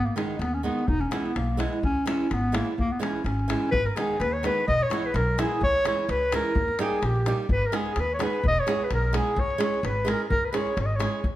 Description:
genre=balkan folk, Balkan wedding band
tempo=127 BPM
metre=2/4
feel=swing 54% on 16ths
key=C# dorian sharp4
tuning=A4 = 440 Hz
part: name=mellow clarinet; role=melody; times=0.0-11.3 s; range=G#3 to D#5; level=-27 LUFS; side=left 1 dB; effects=none
part: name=upright bass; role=bass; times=0.0-11.4 s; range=E1 to D#2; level=-29 LUFS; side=equal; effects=none
part: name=davul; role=percussion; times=0.1-11.4 s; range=none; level=-31 LUFS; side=left 1 dB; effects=none
part: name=flamenco guitar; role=accompaniment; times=0.2-11.2 s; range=D#3 to G#4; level=-30 LUFS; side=right 4 dB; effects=none
part: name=mellow accordion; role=second line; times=3.8-11.3 s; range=G4 to D#5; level=-33 LUFS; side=left 1 dB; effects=none
room=moderate recital hall reverb, RT60 1.5 s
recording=none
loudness=-23 LUFS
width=side -14 dB against mid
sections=0.0-3.7 A section; 3.7-11.2 A section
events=none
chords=0.0 G#m; 0.9 E; 1.8 C#m; 3.7 G#m; 4.7 E; 5.6 C#m; 6.6 D#; 7.5 G#m; 8.4 E; 9.4 C#m

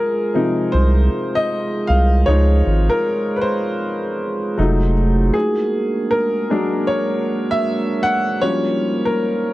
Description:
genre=lo-fi hip hop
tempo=78 BPM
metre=4/4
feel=swing 66% on 16ths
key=Db major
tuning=A4 = 441 Hz
part: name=warm upright piano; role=accompaniment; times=0.0-9.5 s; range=C3 to F#5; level=-19 LUFS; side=left 1 dB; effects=none
part: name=glass harmonica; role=sustained chords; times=0.0-9.5 s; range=G3 to Bb4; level=-23 LUFS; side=right 2 dB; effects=none
part: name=saturated sub bass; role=bass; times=0.7-5.3 s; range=F1 to Db2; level=-14 LUFS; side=equal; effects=none
room=moderate studio reverb, RT60 0.5 s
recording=dark, warm production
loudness=-16 LUFS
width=side -17 dB against mid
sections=0.0-9.5 A section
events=upright piano solo 0.0-9.5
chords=0.0 Dbmaj7; 4.6 F7b9; 5.3 Bbaug7; 8.4 Eb9

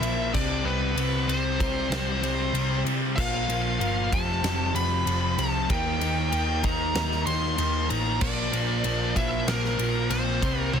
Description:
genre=hard rock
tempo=95 BPM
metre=4/4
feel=straight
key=unclear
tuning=A4 = 445 Hz
part: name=high-gain lead guitar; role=melody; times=0.0-10.8 s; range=Bb4 to C6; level=-30 LUFS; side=equal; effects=distortion
part: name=octave-fuzz lead guitar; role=second line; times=0.0-10.8 s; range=Bb3 to C5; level=-36 LUFS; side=right 4 dB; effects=none
part: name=overdriven tonewheel organ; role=sustained chords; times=0.0-10.8 s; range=F3 to F5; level=-40 LUFS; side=right 1 dB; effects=none
part: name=distorted electric guitar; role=riff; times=0.0-10.8 s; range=F2 to Eb4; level=-33 LUFS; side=right 15 dB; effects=distortion
part: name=overdriven electric guitar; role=riff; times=0.0-10.8 s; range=F2 to Eb4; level=-30 LUFS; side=left 15 dB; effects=none
part: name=hollow-body short-scale picked electric bass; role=bass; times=0.0-10.8 s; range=F1 to C3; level=-29 LUFS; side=right 1 dB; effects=none
part: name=huge arena drum kit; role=drums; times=0.0-10.8 s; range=crash cymbal, kick drum, ride cymbal, snare drum, toms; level=-30 LUFS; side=equal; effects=none
room=light reverb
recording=dense, heavily limited modern master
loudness=-23 LUFS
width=side -7 dB against mid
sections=0.0-10.8 A section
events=none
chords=0.3 C; 3.2 Bb5; 4.1 F; 5.7 Eb; 8.2 Bb

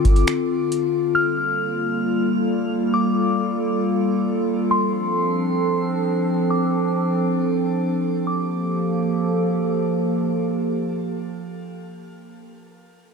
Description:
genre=hip hop, atmospheric cloud-rap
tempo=free time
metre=none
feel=none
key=G minor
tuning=A4 = 440 Hz
part: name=glassy synth bell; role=melody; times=0.0-9.6 s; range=C6 to F6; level=-26 LUFS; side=left 1 dB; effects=chorus, phaser, low-pass filter, digital delay
part: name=warbly tape-like pad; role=sustained chords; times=0.0-12.4 s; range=D3 to A4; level=-20 LUFS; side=equal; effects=chorus, built-in reverb, sidechain pumping, low-pass filter
part: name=booming analog drum machine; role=drums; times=0.1-0.8 s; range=finger snaps, hi-hat, kick drum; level=-17 LUFS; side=equal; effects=none
room=light reverb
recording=dark, warm production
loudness=-19 LUFS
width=side -5 dB against mid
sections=0.0-8.3 A section; 8.3-11.8 B section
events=none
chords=0.0 Dm7; 1.2 Gm9; 4.7 Dm7; 8.3 Gm9

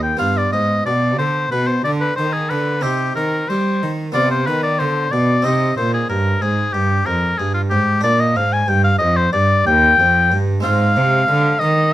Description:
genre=classical, baroque-style sonata movement with continuo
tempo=92 BPM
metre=4/4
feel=rubato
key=C minor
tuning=A4 = 439 Hz
part: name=clear oboe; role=melody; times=0.0-11.9 s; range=F4 to Ab5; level=-17 LUFS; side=left 2 dB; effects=none
part: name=harpsichord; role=accompaniment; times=0.0-11.9 s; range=Eb2 to F4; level=-24 LUFS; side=right 1 dB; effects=none
part: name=rich cello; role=bass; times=0.0-11.9 s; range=Eb2 to G3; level=-19 LUFS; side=right 1 dB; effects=none
room=light reverb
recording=none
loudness=-14 LUFS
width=side -14 dB against mid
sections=0.0-11.9 A section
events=none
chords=0.2 G7; 2.8 Cm; 4.1 Bdim; 5.4 Cm; 8.0 Gm; 10.6 Fm/Ab

